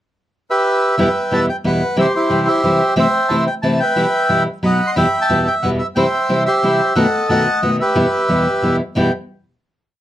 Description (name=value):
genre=tango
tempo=180 BPM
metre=3/4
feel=rubato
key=E minor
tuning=A4 = 440 Hz
part: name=bandoneon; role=melody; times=0.5-9.1 s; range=E4 to C6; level=-16 LUFS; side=right 1 dB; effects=none
part: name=nylon-string guitar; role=accompaniment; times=1.0-9.1 s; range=E2 to F#4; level=-17 LUFS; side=equal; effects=none
room=light reverb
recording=none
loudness=-14 LUFS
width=side -12 dB against mid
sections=0.0-1.0 pickup bar; 1.0-9.0 A section; 9.0-10.0 final chord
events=none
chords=0.0 Em; 2.0 C; 3.0 Am/C; 4.0 Em/B; 4.6 B; 5.0 Em; 6.0 C; 7.0 B7; 8.0 Em